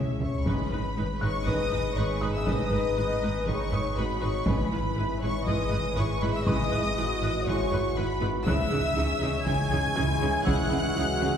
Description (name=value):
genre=cinematic, hybrid orchestral and electronic film score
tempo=120 BPM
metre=4/4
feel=straight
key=unclear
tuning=A4 = 439 Hz
part: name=warm symphonic violin section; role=second line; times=0.0-11.4 s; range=B4 to G#5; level=-34 LUFS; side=left 3 dB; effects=none
part: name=rich symphonic viola section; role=accompaniment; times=0.0-11.3 s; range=D#4 to B4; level=-37 LUFS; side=right 2 dB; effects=none
part: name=analog drone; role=sustained chords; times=0.0-11.4 s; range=G#3 to C#5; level=-36 LUFS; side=left 1 dB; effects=chorus
part: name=dark trombone section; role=sustained chords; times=0.0-11.4 s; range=D#3 to G#3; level=-39 LUFS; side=right 2 dB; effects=none
part: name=mellow French horn section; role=sustained chords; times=0.0-11.3 s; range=C#4 to B4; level=-33 LUFS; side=left 3 dB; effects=none
part: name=rich studio cello section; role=bass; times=0.0-11.3 s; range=G#2 to C#3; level=-33 LUFS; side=right 1 dB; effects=none
part: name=rich symphonic double bass section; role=bass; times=0.0-11.3 s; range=G#1 to C#2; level=-34 LUFS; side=right 2 dB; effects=none
part: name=warm sub bass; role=bass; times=0.0-11.4 s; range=G#1 to C#2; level=-35 LUFS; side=equal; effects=none
part: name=felt-muted upright piano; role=texture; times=0.0-11.4 s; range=C#6 to G#6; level=-42 LUFS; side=left 1 dB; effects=none
part: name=clear symphonic violin section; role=melody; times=0.2-11.4 s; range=B5 to G#6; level=-34 LUFS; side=equal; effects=none
part: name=taiko ensemble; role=drums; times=0.2-10.9 s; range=none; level=-32 LUFS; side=equal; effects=none
room=wet scoring stage reverb, RT60 1.6 s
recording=heard from further back in the room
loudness=-24 LUFS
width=side -8 dB against mid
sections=0.5-11.4 A section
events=drum fill 0.0-0.5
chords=0.5 G#m; 4.5 E/G#; 8.5 C#madd9